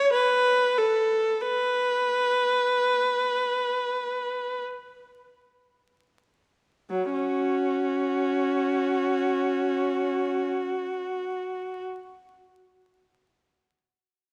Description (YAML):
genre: classical, free, expressive piece for unaccompanied viola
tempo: free time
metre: none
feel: none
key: F# minor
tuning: A4 = 440 Hz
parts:
  - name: clear viola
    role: solo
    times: 0.0-11.8 s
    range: F#3 to B4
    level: -26 LUFS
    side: equal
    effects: none
room: moderate concert hall reverb, RT60 2.3 s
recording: vinyl crackle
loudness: -26 LUFS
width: mono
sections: 0.0-6.9 A section; 6.9-13.7 B section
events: slowing down 0.0-6.9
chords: none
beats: free time